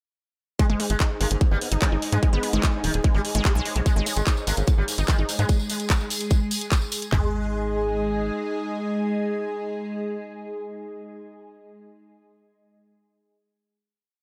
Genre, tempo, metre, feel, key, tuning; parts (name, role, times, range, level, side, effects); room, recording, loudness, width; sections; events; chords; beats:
psychedelic trance; 147 BPM; 4/4; straight; A4 = 440 Hz
sitar; melody; 0.6-11.5 s; G#2 to G#3; -34 LUFS; equal; phaser, sidechain pumping, delay
unison pluck; riff; 0.6-7.3 s; G#3 to G#4; -33 LUFS; equal; sidechain pumping, delay
garage drum kit; drums; 0.6-7.2 s; handclaps, kick drum, toms; -23 LUFS; equal; studio ambience
garage drum kit; drums; 0.6-7.1 s; handclaps, hi-hat; -31 LUFS; equal; studio ambience
airy breathy pad; texture; 0.6-11.2 s; D#4 to G#5; -38 LUFS; equal; chorus, phaser, sidechain pumping
tight sequencer bass; bass; 0.7-8.3 s; D#1 to G#2; -27 LUFS; equal
formant-sweep wobble bass; second line; 1.5-2.9 s; B3 to D#4; -40 LUFS; equal; chorus, sidechain pumping, high-pass filter, delay
evolving wavetable pad; sustained chords; 4.9-11.2 s; G#3 to G#4; -34 LUFS; equal; ensemble chorus, built-in reverb, phaser, sidechain pumping
tambourine; percussion; 3.9-7.1 s; -35 LUFS; equal
light reverb, digital ambience; -24 LUFS; mono
0.6-7.1 groove; 7.1-10.4 final chord
0.6 G#5
| 0.59 1.00 1.41 1.82 | 2.23 2.63 3.04 3.45 | 3.86 4.27 4.67 5.08 | 5.49 5.90 6.31 6.72 | 7.12 7.53 7.94 8.35 | 8.76 9.16 9.57 9.98